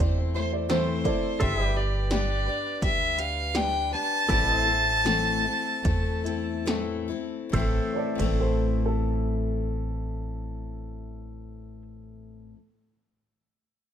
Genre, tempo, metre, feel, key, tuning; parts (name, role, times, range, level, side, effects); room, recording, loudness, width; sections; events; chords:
honky-tonk and classic country; 68-85 BPM; 4/4; straight; A minor; A4 = 440 Hz
rich fiddle; melody; 0.0-6.6 s; C5 to A5; -26 LUFS; equal
dark upright piano; second line; 0.0-1.4, 7.9-12.5 s; A4 to D5; -33 LUFS; right 5 dB
picked steel-string acoustic guitar; accompaniment; 0.0-12.6 s; A2 to C5; -31 LUFS; left 7 dB
pedal steel guitar; sustained chords; 0.0-11.8 s; G4 to E5; -37 LUFS; right 2 dB
upright bass; bass; 0.0-12.5 s; G1 to E2; -29 LUFS; right 1 dB
80s electronic pad drums; drums; 0.0-8.4 s; hi-hat, kick drum, ride cymbal, snare drum; -30 LUFS; right 1 dB
bright baby grand piano; accompaniment; 0.7-1.2 s; E4 to C5; -36 LUFS; right 8 dB
little or no reverb; close, detailed microphones; -24 LUFS; side -9 dB against mid
0.0-1.4 A section; 1.4-7.5 B section; 7.5-11.1 C section
slowing down 1.4-7.5
0.0 Am; 1.4 G; 4.3 Am